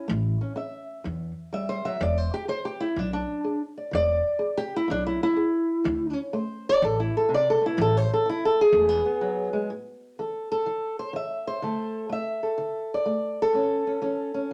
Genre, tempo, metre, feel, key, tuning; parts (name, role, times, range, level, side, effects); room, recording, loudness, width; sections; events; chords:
acoustic country blues, solo or duo; 125 BPM; 4/4; swing 67% on 8ths; A4 = 442 Hz
fingerpicked old ladder-braced acoustic guitar; melody; 0.0-14.5 s; A2 to E5; -26 LUFS; equal
upright bass; bass; 0.1-9.0 s; E1 to E2; -30 LUFS; equal
wet studio reverb, RT60 0.7 s; -26 LUFS; mono
0.0-9.7 A section; 9.7-14.5 A section
steel-string acoustic guitar solo 0.0-9.7, 9.7-14.5
0.0 A; 2.0 E7; 5.8 D5; 7.8 A5; 8.7 E; 9.7 A5; 11.6 D5; 13.5 A